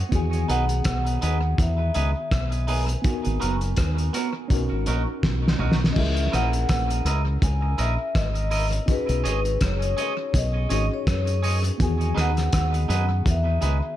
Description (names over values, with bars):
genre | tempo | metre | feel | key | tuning
lovers rock reggae | 82 BPM | 4/4 | swing 57% on 16ths | C# dorian | A4 = 440 Hz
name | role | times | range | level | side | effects
tine electric piano | accompaniment | 0.0-14.0 s | D#3 to G#5 | -32 LUFS | left 2 dB | medium stereo tremolo, tape echo
fingered electric bass | bass | 0.1-13.8 s | F#1 to F#2 | -24 LUFS | equal | none
cloth-damped thuddy drum kit | drums | 0.1-13.8 s | crash cymbal, hi-hat, kick drum, rim click, snare drum, toms | -26 LUFS | equal | gated reverb, tape echo
vibraphone with soft mallets | melody | 0.2-14.0 s | B4 to G#5 | -30 LUFS | left 2 dB | tape echo
twangy electric guitar | stabs | 0.5-13.8 s | B3 to D#5 | -31 LUFS | right 4 dB | tape echo
room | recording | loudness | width
small room reverb | none | -21 LUFS | side -13 dB against mid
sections
0.0-6.0 A section; 6.0-14.0 A section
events
drum fill 5.2-6.0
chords
0.1 Emaj7; 3.0 G#m9; 4.5 Bmaj7; 6.0 C#m69; 8.9 B69; 11.8 Emaj7